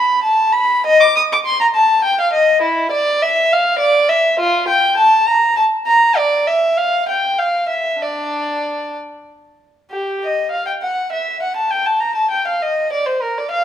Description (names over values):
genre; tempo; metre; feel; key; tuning
classical, baroque-style suite movement for unaccompanied violin; 62-69 BPM (dotted quarters); 6/8; rubato; D minor, G minor from 9.9 s; A4 = 439 Hz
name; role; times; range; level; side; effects
dark violin; solo; 0.0-13.6 s; D4 to Eb6; -13 LUFS; equal; none
room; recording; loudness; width
moderate recital hall reverb, RT60 1.3 s; none; -13 LUFS; side -10 dB against mid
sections
0.0-9.9 A section; 9.9-13.6 A section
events
none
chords
none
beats
| 0.86 1.75 | 2.62 3.49 | 4.39 5.28 | 6.16 7.07 | 8.01 8.97 | 9.92 10.82 | 11.71 12.61 | 13.51